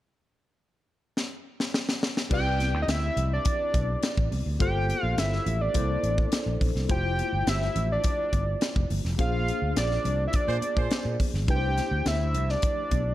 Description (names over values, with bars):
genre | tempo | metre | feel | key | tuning
polished 1980s jazz-funk pop | 105 BPM | 4/4 | straight | C major | A4 = 440 Hz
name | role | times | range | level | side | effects
crisp fusion drum kit | drums | 1.2-13.0 s | crash cymbal, hi-hat, kick drum, snare drum | -28 LUFS | equal | none
fat analog lead | melody | 2.3-13.1 s | D5 to G5 | -29 LUFS | right 1 dB | chorus
tine electric piano | accompaniment | 2.3-13.1 s | A3 to D5 | -34 LUFS | left 3 dB | overdrive, fast stereo tremolo, wide subtle chorus
fretless electric bass | bass | 2.3-13.1 s | F1 to Bb2 | -28 LUFS | equal | none
congas | percussion | 2.3-13.0 s | none | -41 LUFS | right 6 dB | none
warm horn section | second line | 10.5-11.2 s | Ab3 to C5 | -35 LUFS | right 4 dB | none
room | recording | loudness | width
light reverb, small room ambience | dark, warm production | -24 LUFS | side -14 dB against mid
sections
0.0-2.3 A section; 2.3-13.1 B section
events
drum fill 1.2-2.3; band accent 9.2-11.5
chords
0.0 N.C.; 2.3 Cmaj9; 4.6 Gm11; 5.7 C13; 6.9 Fmaj9; 9.2 Bb9; 11.5 C69